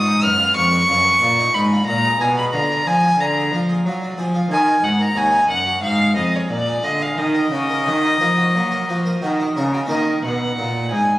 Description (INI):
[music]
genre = classical, baroque-style sonata movement with continuo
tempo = 90 BPM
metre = 4/4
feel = straight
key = Eb minor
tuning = A4 = 440 Hz
[part]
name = rich violin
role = melody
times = 0.0-11.2 s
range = Db5 to F6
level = -17 LUFS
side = equal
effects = none
[part]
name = harpsichord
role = accompaniment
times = 0.0-11.2 s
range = Eb2 to Cb5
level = -26 LUFS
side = right 1 dB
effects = none
[part]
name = rich cello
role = bass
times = 0.0-11.2 s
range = Eb2 to Gb3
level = -20 LUFS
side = equal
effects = none
[sound]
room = moderate recital hall reverb, RT60 1.8 s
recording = recorded on a phone in the room, studio reverb, compression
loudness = -15 LUFS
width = side -16 dB against mid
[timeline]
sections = 0.0-9.9 A section; 9.9-11.2 B section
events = none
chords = 0.0 Fm7b5; 1.9 Bb7; 4.5 Ebm; 5.8 Fm7; 6.5 Bb7; 7.2 Ebm